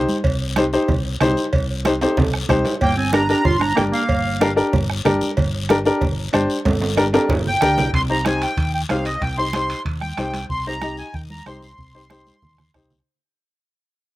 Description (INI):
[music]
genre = latin, cumbia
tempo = 187 BPM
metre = 4/4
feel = straight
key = C minor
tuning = A4 = 440 Hz
[part]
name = clear upright piano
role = accompaniment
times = 0.0-12.9 s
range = D4 to Eb5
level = -20 LUFS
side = left 1 dB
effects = none
[part]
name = fingered electric bass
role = bass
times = 0.0-13.0 s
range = G1 to Eb2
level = -25 LUFS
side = equal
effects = none
[part]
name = congas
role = percussion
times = 0.1-13.0 s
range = none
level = -26 LUFS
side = right 2 dB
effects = none
[part]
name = guiro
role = percussion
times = 0.1-13.1 s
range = none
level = -34 LUFS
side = left 6 dB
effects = none
[part]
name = bombo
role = percussion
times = 0.2-12.9 s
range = none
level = -23 LUFS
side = right 1 dB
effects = none
[part]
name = cowbell and timbales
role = percussion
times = 0.2-10.5 s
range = none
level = -27 LUFS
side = right 3 dB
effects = slapback echo
[part]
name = accordion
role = melody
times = 2.8-4.5, 7.5-12.7 s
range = Eb5 to C6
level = -23 LUFS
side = equal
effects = light tremolo tuning, slapback echo
[part]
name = growling clarinet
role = second line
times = 2.8-4.5 s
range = Bb3 to F4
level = -23 LUFS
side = right 4 dB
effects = none
[sound]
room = little or no reverb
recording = recorded outdoors, with no room sound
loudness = -17 LUFS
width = side -17 dB against mid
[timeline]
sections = 0.0-7.9 A section; 7.9-13.1 B section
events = drum fill 2.0-2.8, 6.7-7.9, 12.3-13.1; fade-out 7.9-13.1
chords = 0.0 Cm; 2.8 Gm; 7.9 Cm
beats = | 0.24 0.57 0.89 1.21 | 1.53 1.85 2.17 2.49 | 2.81 3.13 3.45 3.77 | 4.09 4.41 4.73 5.05 | 5.37 5.69 6.01 6.33 | 6.65 6.97 7.29 7.61 | 7.93 8.25 8.57 8.89 | 9.21 9.53 9.85 10.17 | 10.49 10.82 11.14 11.46 | 11.78 12.10 12.42 12.74